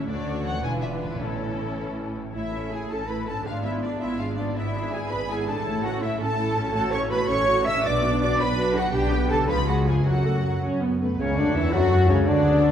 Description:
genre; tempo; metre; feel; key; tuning
classical, dramatic, fast romantic movement for symphony orchestra; 109 BPM (dotted quarters); 6/8; straight; A major, F# minor from 6.7 s; A4 = 440 Hz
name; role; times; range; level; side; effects
clear symphonic violin section; second line; 0.0-12.7 s; C#4 to E6; -32 LUFS; left 1 dB; none
rich symphonic viola section; accompaniment; 0.0-12.7 s; E3 to B4; -29 LUFS; right 2 dB; none
concert harp; arpeggios; 0.0-12.7 s; F#2 to F#5; -30 LUFS; left 3 dB; none
rich symphonic violin section; melody; 0.1-12.7 s; A4 to E6; -35 LUFS; left 3 dB; none
rich chamber double bass section; bass; 0.1-12.7 s; E1 to F#2; -28 LUFS; right 1 dB; none
rich symphonic cello section; bass; 0.1-12.7 s; D2 to E5; -28 LUFS; right 2 dB; none
dark French horn section; sustained chords; 11.0-12.7 s; B3 to F#4; -23 LUFS; left 3 dB; none
mellow hollow silver concert flute; second line; 11.2-12.7 s; C#4 to F#4; -28 LUFS; left 4 dB; none
warm clarinet; second line; 11.2-12.7 s; F#4 to C#5; -33 LUFS; left 1 dB; none
clear bassoon; accompaniment; 11.2-12.7 s; C#3 to F#3; -27 LUFS; right 1 dB; none
room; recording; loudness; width
wet scoring stage reverb, RT60 1.7 s; heard from further back in the room; -22 LUFS; side -9 dB against mid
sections
0.0-2.3 A section; 2.3-11.2 A section; 11.2-12.7 B section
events
none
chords
0.1 Dmaj7; 0.6 E5; 1.2 A; 3.5 G#dim7; 4.6 E7/G#; 5.7 A; 6.7 F#m/A; 7.8 Bm; 8.9 G/B; 9.5 C#7; 10.1 F#m; 11.2 F#m/C#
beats
| 0.08 0.64 | 1.21 1.78 | 2.35 2.90 | 3.45 4.00 | 4.56 5.10 | 5.65 6.20 | 6.74 7.29 | 7.84 8.39 | 8.93 9.48 | 10.05 10.62 | 11.19 11.73 | 12.27

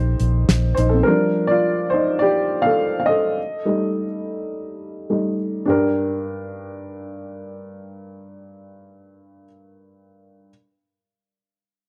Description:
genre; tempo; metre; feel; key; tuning
piano-driven pop; 104 BPM; 4/4; straight; G minor; A4 = 440 Hz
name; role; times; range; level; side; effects
dark upright piano; accompaniment; 0.0-10.5 s; G2 to F5; -22 LUFS; equal; none
vintage muted fingered electric bass; bass; 0.0-1.0 s; Bb1; -20 LUFS; equal; none
damped 70s drum kit; drums; 0.2-0.9 s; hi-hat, snare drum; -22 LUFS; equal; none
room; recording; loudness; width
little or no reverb; dry, close 1970s-style studio recording; -20 LUFS; mono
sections
0.0-5.7 A section; 5.7-8.0 B section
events
upright piano solo 0.0-5.7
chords
0.0 Gmadd9/Bb; 1.1 Ebmaj7; 3.4 Gsus2; 5.7 Gm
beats
0.48 | 1.06 1.64 2.21 2.79 | 3.37 3.94 4.52 5.10 | 5.68 6.25 6.83 7.41

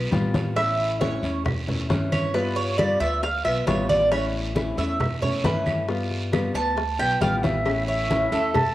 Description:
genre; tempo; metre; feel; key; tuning
latin, Cuban son and guajira; 135 BPM; 4/4; straight; A major; A4 = 440 Hz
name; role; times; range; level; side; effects
nylon-string guitar; accompaniment; 0.0-8.6 s; E3 to F4; -28 LUFS; left 2 dB; cassette tape
upright bass; bass; 0.0-8.7 s; A1 to G2; -30 LUFS; equal; none
bongos and cowbell; percussion; 0.1-8.7 s; none; -32 LUFS; left 5 dB; none
congas; percussion; 0.1-8.7 s; none; -27 LUFS; equal; none
guiro; percussion; 0.1-8.7 s; none; -37 LUFS; right 3 dB; none
Cuban tres; arpeggios; 0.6-8.7 s; A4 to A5; -24 LUFS; right 2 dB; cassette tape
claves; percussion; 0.6-8.7 s; none; -38 LUFS; right 3 dB; none
mellow reedy concert flute; melody; 7.2-8.7 s; E5 to A5; -24 LUFS; equal; tape echo
room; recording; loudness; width
wet spring reverb, RT60 1.4 s; home recording on cassette; -21 LUFS; side -15 dB against mid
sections
0.0-7.7 A section; 7.7-8.7 B section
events
drum fill 0.0-0.6, 7.2-7.7; Cuban tres solo 0.0-7.7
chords
0.0 G7; 0.6 A; 2.3 G7; 4.1 A; 5.9 G7; 7.7 A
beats
0.12 | 0.56 1.01 1.45 1.90 | 2.34 2.78 3.23 3.67 | 4.11 4.56 5.00 5.44 | 5.89 6.33 6.77 7.22 | 7.66 8.10 8.54

